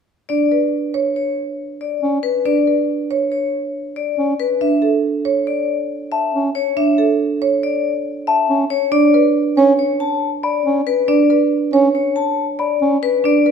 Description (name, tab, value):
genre	classical, minimalist pattern music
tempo	139 BPM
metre	5/4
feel	straight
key	B minor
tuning	A4 = 440 Hz
part	vibraphone with medium hard mallets	melody	0.3-13.5 s	B4 to A5	-19 LUFS	left 9 dB	none
part	marimba with medium mallets	arpeggios	0.3-13.5 s	D4 to C#5	-18 LUFS	right 5 dB	none
part	mellow bass clarinet	accompaniment	2.0-13.0 s	C#4	-19 LUFS	right 2 dB	none
part	small celesta	arpeggios	6.1-12.9 s	A5 to B5	-20 LUFS	left 4 dB	none
room	moderate recital hall reverb, RT60 1.4 s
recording	minimal, uncompressed stereo recording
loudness	-15 LUFS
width	side -6 dB against mid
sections	0.3-13.5 A section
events	none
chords	0.3 Bm; 4.6 D5; 8.9 Bm